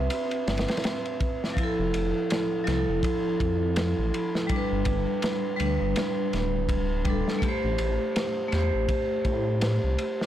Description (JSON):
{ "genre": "trip hop", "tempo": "82 BPM", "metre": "4/4", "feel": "swing 58% on 16ths", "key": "A minor", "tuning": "A4 = 441 Hz", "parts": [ { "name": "vibraphone with hard mallets", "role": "accompaniment", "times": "0.0-10.3 s", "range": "F3 to E5", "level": "-27 LUFS", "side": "equal", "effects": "harmonic tremolo, tape echo" }, { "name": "dark detuned saw bass", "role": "bass", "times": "0.0-10.0 s", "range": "D1 to A2", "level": "-28 LUFS", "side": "equal", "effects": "tube saturation" }, { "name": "crunchy breakbeat drum kit", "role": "drums", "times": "0.1-10.3 s", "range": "kick drum, ride cymbal, snare drum", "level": "-30 LUFS", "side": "equal", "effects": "none" } ], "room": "light reverb, small room ambience", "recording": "blown-out, overdriven recording, overdrive", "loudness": "-24 LUFS", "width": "side -12 dB against mid", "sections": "0.0-10.3 A section", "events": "none", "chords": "0.0 Cmaj7; 1.6 Fmaj7; 4.5 G; 7.4 Am7" }